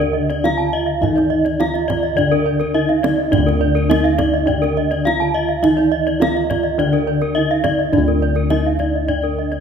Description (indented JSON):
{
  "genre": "Balinese gamelan",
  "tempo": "104 BPM",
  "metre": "4/4",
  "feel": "straight",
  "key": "unclear",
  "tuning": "A4 = 440 Hz",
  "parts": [
    { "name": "gamelan-type bronze metallophone", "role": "melody", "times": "0.0-9.6 s", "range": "D4 to F4-30c", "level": "-21 LUFS", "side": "right 3 dB", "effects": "none" },
    { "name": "gamelan-type bronze metallophone", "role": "accompaniment", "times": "0.0-7.9 s", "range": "D3 to Eb3+20c", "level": "-27 LUFS", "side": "left 1 dB", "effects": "none" },
    { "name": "gamelan-type bronze metallophone", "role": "arpeggios", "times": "0.0-9.5 s", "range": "Bb4-20c to A5-30c", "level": "-23 LUFS", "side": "right 6 dB", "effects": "none" },
    { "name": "gamelan-type bossed gongs", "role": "bass", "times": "0.0-9.6 s", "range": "D2 to Eb4+20c", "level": "-20 LUFS", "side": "left 1 dB", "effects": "none" },
    { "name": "kendang", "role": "percussion", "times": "0.0-9.6 s", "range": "none", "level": "-24 LUFS", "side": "right 4 dB", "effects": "none" },
    { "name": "gamelan-type bronze metallophone", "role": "arpeggios", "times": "0.3-9.6 s", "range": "Bb4-20c to F5-30c", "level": "-21 LUFS", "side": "left 5 dB", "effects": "none" }
  ],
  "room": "moderate scoring stage reverb, RT60 1.8 s",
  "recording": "minimal, uncompressed stereo recording",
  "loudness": "-15 LUFS",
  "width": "side -7 dB against mid",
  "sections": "0.0-7.9 A section; 7.9-9.6 A section",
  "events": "none",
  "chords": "none"
}